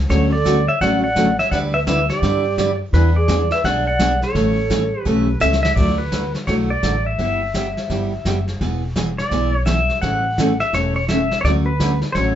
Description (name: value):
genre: country, western swing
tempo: 169 BPM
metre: 4/4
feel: swing 63% on 8ths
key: D major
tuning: A4 = 439 Hz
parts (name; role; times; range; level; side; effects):
- upright bass; bass; 0.0-12.4 s; E1 to G2; -21 LUFS; equal; none
- pedal steel guitar; melody; 0.1-12.4 s; B4 to F#5; -21 LUFS; left 1 dB; none
- mellow hollow concert flute; second line; 0.1-5.4 s; E4 to D5; -24 LUFS; right 4 dB; none
- picked steel-string acoustic guitar; accompaniment; 0.1-12.4 s; C#3 to B4; -22 LUFS; equal; none
- vintage brush drum kit; drums; 0.1-12.4 s; brushed snare drum, hi-hat, kick drum, ride cymbal, snare drum; -25 LUFS; left 1 dB; none
room: moderate studio ambience, RT60 0.4 s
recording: band playing live in one room, nothing above 7.7 kHz, faint mains hum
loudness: -16 LUFS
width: side -10 dB against mid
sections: 0.0-5.8 A section; 5.8-12.4 B section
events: drum fill 5.4-5.8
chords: 0.1 Dmaj7; 1.5 G6/D; 2.9 E7; 4.3 A; 5.8 Dadd9; 7.2 G6; 8.6 E; 10.0 A; 11.4 Dmaj7